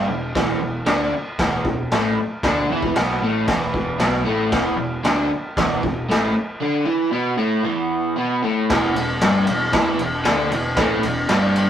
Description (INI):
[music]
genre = garage rock duo or trio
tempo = 115 BPM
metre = 4/4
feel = straight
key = unclear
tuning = A4 = 439 Hz
[part]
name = crunchy overdriven guitar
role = riff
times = 0.0-11.7 s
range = E2 to E4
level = -20 LUFS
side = equal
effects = none
[part]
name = fuzz picked electric bass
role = bass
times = 0.0-11.7 s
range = E1 to E2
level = -29 LUFS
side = equal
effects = overdrive
[part]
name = raw garage drum kit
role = drums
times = 0.4-11.7 s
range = crash cymbal, kick drum, ride cymbal, snare drum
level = -21 LUFS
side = equal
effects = none
[sound]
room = moderate small room reverb, RT60 0.5 s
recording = rough rehearsal-room recording, warm saturation, faint mains hum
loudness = -18 LUFS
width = side -10 dB against mid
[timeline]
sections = 0.0-8.7 A section; 8.7-11.7 B section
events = none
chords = 0.0 E5; 8.7 Em7